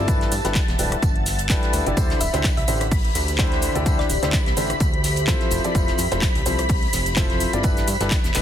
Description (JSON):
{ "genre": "piano house", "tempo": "127 BPM", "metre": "4/4", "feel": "swing 55% on 16ths", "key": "unclear", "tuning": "A4 = 440 Hz", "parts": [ { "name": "analog string pad", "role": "sustained chords", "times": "0.0-8.4 s", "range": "A5 to B5", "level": "-29 LUFS", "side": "left 1 dB", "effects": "ensemble chorus, sidechain pumping" }, { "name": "warm concert grand piano", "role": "riff", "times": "0.0-8.4 s", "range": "D3 to D5", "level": "-26 LUFS", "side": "left 1 dB", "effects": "sidechain pumping, digital delay" }, { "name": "fat analog bass", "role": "bass", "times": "0.0-8.4 s", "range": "D1 to G2", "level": "-26 LUFS", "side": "equal", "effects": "sidechain pumping" }, { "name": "ethereal airy pad", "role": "texture", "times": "0.0-8.4 s", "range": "F#4 to F#5", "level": "-32 LUFS", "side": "equal", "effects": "ensemble chorus, built-in reverb, sidechain pumping" }, { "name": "electronic kick drum", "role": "drums", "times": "0.1-8.2 s", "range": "none", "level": "-22 LUFS", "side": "equal", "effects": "overdrive" }, { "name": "house drum kit", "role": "drums", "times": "0.1-8.4 s", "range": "handclaps, hi-hat, rim click, shaker", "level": "-27 LUFS", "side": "equal", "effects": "overdrive" }, { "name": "loose indie drum kit", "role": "drums", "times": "0.1-8.4 s", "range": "hi-hat, snare drum, tambourine", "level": "-34 LUFS", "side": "left 3 dB", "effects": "sidechain pumping on hats, high-pass filter on hats, high-pass filter on snare, sidechain pumping on perc, high-pass filter on perc, high-pass filter on room" }, { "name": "thumb-piano-like synth pluck", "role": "melody", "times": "2.2-4.5 s", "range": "D5 to E5", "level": "-30 LUFS", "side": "left 1 dB", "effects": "chorus, phaser, digital delay" } ], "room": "small room ambience", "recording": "dense, heavily limited modern master", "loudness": "-18 LUFS", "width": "side -10 dB against mid", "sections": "0.0-8.4 A section", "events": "none", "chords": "0.1 G69; 2.0 D9sus4; 5.5 Fmaj7; 7.6 G69", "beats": "| 0.08 0.55 1.02 1.50 | 1.97 2.44 2.92 3.39 | 3.86 4.33 4.80 5.28 | 5.75 6.22 6.70 7.17 | 7.64 8.11" }